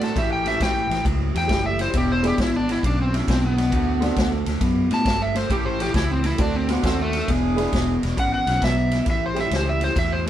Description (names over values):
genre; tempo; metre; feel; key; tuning
electric blues shuffle; 135 BPM; 4/4; swing 67% on 8ths; A mixolydian; A4 = 442 Hz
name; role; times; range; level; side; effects
overdriven slide guitar; melody; 0.0-10.3 s; A3 to A5; -24 LUFS; equal; none
honky-tonk upright piano; accompaniment; 0.0-9.9 s; F#3 to A4; -29 LUFS; right 2 dB; none
electric guitar through a small old amp; riff; 0.0-10.3 s; E2 to B3; -25 LUFS; left 1 dB; none
mellow saxophone section; stabs; 0.0-8.1 s; G#3 to G#4; -31 LUFS; right 4 dB; none
fingered electric bass; bass; 0.0-10.3 s; E1 to A2; -26 LUFS; equal; none
vintage drum kit; drums; 0.0-10.3 s; kick drum, ride cymbal, snare drum; -25 LUFS; equal; none
room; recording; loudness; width
light reverb; band playing live in one room; -19 LUFS; side -11 dB against mid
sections
0.0-9.1 A section; 9.1-10.3 B section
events
electric slide guitar solo 0.0-9.1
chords
0.2 A7; 1.9 E7; 3.7 D; 5.5 A7; 6.4 D7; 7.3 E7; 9.1 A7